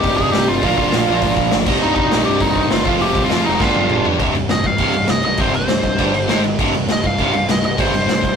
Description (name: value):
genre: punk rock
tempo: 201 BPM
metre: 4/4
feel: straight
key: C minor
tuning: A4 = 441 Hz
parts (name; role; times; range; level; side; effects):
- biting lead guitar; melody; 0.0-8.4 s; Eb4 to F5; -20 LUFS; equal; overdrive
- biting overdriven guitar; riff; 0.0-8.4 s; C2 to Bb4; -22 LUFS; left 5 dB; none
- overdriven semi-hollow guitar; riff; 0.0-8.4 s; C2 to Bb4; -21 LUFS; right 4 dB; none
- overdriven semi-hollow guitar; riff; 0.0-8.4 s; C2 to Bb3; -29 LUFS; equal; none
- fuzz picked electric bass; bass; 0.0-8.4 s; C1 to F2; -25 LUFS; equal; overdrive
- raw garage drum kit; drums; 0.0-8.3 s; crash cymbal, hi-hat, kick drum, snare drum, toms; -19 LUFS; equal; none
room: moderate booth ambience, RT60 0.2 s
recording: rough rehearsal-room recording, tube saturation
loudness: -14 LUFS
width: side -7 dB against mid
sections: 0.0-4.2 A section; 4.2-8.4 B section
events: drum fill 3.6-4.2; lead electric guitar solo 4.2-8.4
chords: 0.0 Cm; 0.6 Bb; 1.7 Cm; 2.9 Fm; 3.6 G7; 4.2 C5; 6.0 G5; 6.3 Ab5; 6.6 C5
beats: 0.04 0.34 | 0.63 0.93 1.23 1.52 | 1.82 2.12 2.42 2.71 | 3.01 3.31 3.61 3.90 | 4.20 4.50 4.80 5.10 | 5.40 5.70 5.99 6.29 | 6.59 6.89 7.19 7.49 | 7.79 8.08